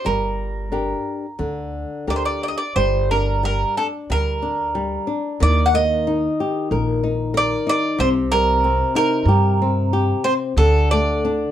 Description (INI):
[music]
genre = fado-style ballad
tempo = 91 BPM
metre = 4/4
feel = uneven beats, rubato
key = G minor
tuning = A4 = 439 Hz
[part]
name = mandolin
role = melody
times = 0.0-11.5 s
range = A4 to F#5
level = -21 LUFS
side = right 2 dB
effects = none
[part]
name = flamenco guitar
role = accompaniment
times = 0.0-11.5 s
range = C3 to Bb4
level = -23 LUFS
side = left 3 dB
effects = none
[part]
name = upright bass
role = bass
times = 0.1-11.4 s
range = G1 to G2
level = -21 LUFS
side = right 1 dB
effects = none
[sound]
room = light reverb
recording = dark, warm production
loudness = -17 LUFS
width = side -11 dB against mid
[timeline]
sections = 0.0-2.8 A section; 2.8-11.5 B section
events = none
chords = 0.1 Gm; 5.4 Eb5; 8.0 C5; 10.6 D5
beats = | 0.05 0.72 1.39 2.07 | 2.76 3.43 4.10 4.75 | 5.42 6.07 6.72 7.35 | 7.99 8.62 9.26 9.91 | 10.57 11.23